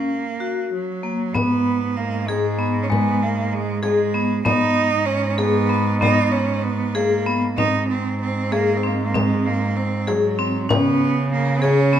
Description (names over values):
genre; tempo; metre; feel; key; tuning
contemporary instrumental, chamber music in an uneven meter; 193 BPM (eighths); 5/8; straight; G# minor; A4 = 439 Hz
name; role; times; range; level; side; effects
bright cello; melody; 0.0-12.0 s; F#3 to D#4; -23 LUFS; right 6 dB; none
vibraphone with hard mallets; arpeggios; 0.0-12.0 s; G#3 to G#4; -22 LUFS; left 3 dB; none
rich cello; bass; 1.3-12.0 s; G#2 to C#3; -23 LUFS; right 1 dB; none
frame drum; percussion; 1.4-11.9 s; none; -26 LUFS; left 3 dB; none
room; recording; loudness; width
light reverb; close, detailed microphones; -18 LUFS; side -10 dB against mid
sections
0.0-1.3 A section; 1.3-12.0 B section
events
break 0.0-1.3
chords
0.0 F#; 1.3 G#m; 7.6 G#; 10.7 C#5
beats
0.09 0.41 0.72 1.03 | 1.35 1.66 1.98 2.29 2.60 | 2.91 3.22 3.53 3.84 4.15 | 4.46 4.77 5.08 5.39 5.70 | 6.01 6.33 6.64 6.96 7.27 | 7.58 7.90 8.21 8.53 8.84 | 9.15 9.46 9.77 10.08 10.39 | 10.70 11.01 11.32 11.63 11.95